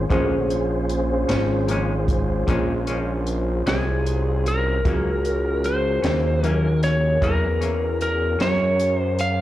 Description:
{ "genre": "slow blues", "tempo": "51 BPM (dotted quarters)", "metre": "12/8", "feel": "straight", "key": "Bb minor", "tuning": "A4 = 440 Hz", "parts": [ { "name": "barky tine electric piano", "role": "accompaniment", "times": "0.0-9.4 s", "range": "Db4 to C5", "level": "-29 LUFS", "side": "right 2 dB", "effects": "medium stereo tremolo, slapback echo" }, { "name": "mellow tonewheel organ", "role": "sustained chords", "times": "0.0-9.4 s", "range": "D3 to C5", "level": "-30 LUFS", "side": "left 1 dB", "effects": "slow rotary speaker, overdrive, chorus vibrato" }, { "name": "fat analog bass", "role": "bass", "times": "0.0-9.4 s", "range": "Ab1 to Gb2", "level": "-22 LUFS", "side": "equal", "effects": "none" }, { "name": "semi-hollow electric guitar", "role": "accompaniment", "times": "0.1-8.6 s", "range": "Gb2 to Db4", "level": "-29 LUFS", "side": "left 4 dB", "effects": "tremolo, slapback echo" }, { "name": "compact cocktail drum kit", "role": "drums", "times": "0.1-9.4 s", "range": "hi-hat, kick drum, snare drum", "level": "-26 LUFS", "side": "equal", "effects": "none" }, { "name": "electric slide guitar", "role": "melody", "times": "3.7-9.4 s", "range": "Ab4 to F5", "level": "-24 LUFS", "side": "left 1 dB", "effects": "slapback echo" } ], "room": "studio reverb", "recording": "live gig heard through the venue's PA, club reverb", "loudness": "-19 LUFS", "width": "side -14 dB against mid", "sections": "0.0-9.4 A section", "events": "none", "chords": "0.0 Bbm7; 4.8 Gb7", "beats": "| 0.10 1.29 2.48 3.66 | 4.85 6.03 7.22 8.40" }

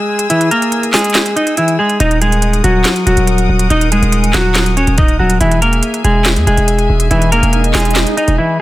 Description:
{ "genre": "hip hop, trap", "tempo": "141 BPM", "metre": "4/4", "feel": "half-time", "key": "unclear", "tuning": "A4 = 437 Hz", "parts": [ { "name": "semi-hollow electric guitar", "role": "melody", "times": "0.0-8.6 s", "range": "E3 to Eb5", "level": "-13 LUFS", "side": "equal", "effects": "low-pass filter, digital delay" }, { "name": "bright chamber string section", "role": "sustained chords", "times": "0.0-8.6 s", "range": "G#4 to E6", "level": "-22 LUFS", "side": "left 3 dB", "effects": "none" }, { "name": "trap drum kit", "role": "drums", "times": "0.2-8.4 s", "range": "handclaps, hi-hat, kick drum, snare drum", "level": "-16 LUFS", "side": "equal", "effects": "none" }, { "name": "hard-hitting 808-style bass", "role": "bass", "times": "2.0-8.4 s", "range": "Eb1 to E2", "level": "-14 LUFS", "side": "equal", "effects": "none" }, { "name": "swell", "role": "sound effects", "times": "6.9-8.4 s", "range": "none", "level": "-24 LUFS", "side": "right 3 dB", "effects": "none" } ], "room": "light reverb, digital ambience", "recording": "none", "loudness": "-10 LUFS", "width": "side -16 dB against mid", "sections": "0.0-8.6 A section", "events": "break 0.0-2.0; swell 6.9-8.6", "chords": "0.0 E; 2.0 Ebm; 5.4 E", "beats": "| 0.30 0.72 1.15 1.58 | 2.00 2.43 2.85 3.28 | 3.70 4.13 4.55 4.98 | 5.41 5.83 6.26 6.68 | 7.11 7.53 7.96 8.38" }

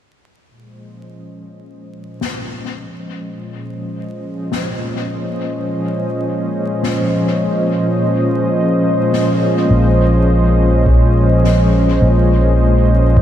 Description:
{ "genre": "ambient dub", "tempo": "104 BPM", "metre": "4/4", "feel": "swing 57% on 16ths", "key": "Bb minor", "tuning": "A4 = 440 Hz", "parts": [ { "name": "warm analog pad", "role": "sustained chords", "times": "0.5-13.2 s", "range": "Bb2 to Eb5", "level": "-16 LUFS", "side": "equal", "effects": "chorus, tremolo" }, { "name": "snare drum", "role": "drums", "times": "2.2-11.6 s", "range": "none", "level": "-27 LUFS", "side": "left 4 dB", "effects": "dub echo" }, { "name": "fingered electric bass", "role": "bass", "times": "9.7-13.2 s", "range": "Ab1 to Bb1", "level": "-12 LUFS", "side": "equal", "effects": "none" }, { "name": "electronic kick drum", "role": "drums", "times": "10.9-13.2 s", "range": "none", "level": "-14 LUFS", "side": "equal", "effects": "none" } ], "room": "moderate huge ambient reverb, RT60 3.9 s", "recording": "dreamy mix soaked in reverb, vinyl crackle", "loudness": "-13 LUFS", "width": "side -11 dB against mid", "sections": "0.5-9.7 A section; 9.7-13.2 B section", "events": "fade-in on analog synth pad 0.5-9.7", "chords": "0.5 Bbm11", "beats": "| 0.48 1.06 1.63 2.21 | 2.79 3.36 3.94 4.52 | 5.09 5.67 6.25 6.83 | 7.40 7.98 8.56 9.13 | 9.71 10.29 10.86 11.44 | 12.02 12.59 13.17" }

